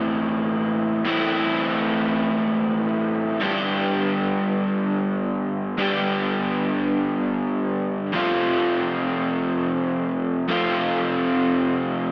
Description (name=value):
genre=rock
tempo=free time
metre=none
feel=none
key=G mixolydian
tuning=A4 = 440 Hz
part: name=overdriven electric guitar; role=solo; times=0.0-12.1 s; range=F2 to G4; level=-20 LUFS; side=equal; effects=wide subtle chorus, analog delay
room=wet lush hall reverb, RT60 2.6 s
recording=dreamy mix soaked in reverb, AM radio sound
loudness=-20 LUFS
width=side -35 dB against mid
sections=0.0-3.4 A section; 3.4-12.1 B section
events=none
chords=0.0 Am; 3.4 G; 8.1 F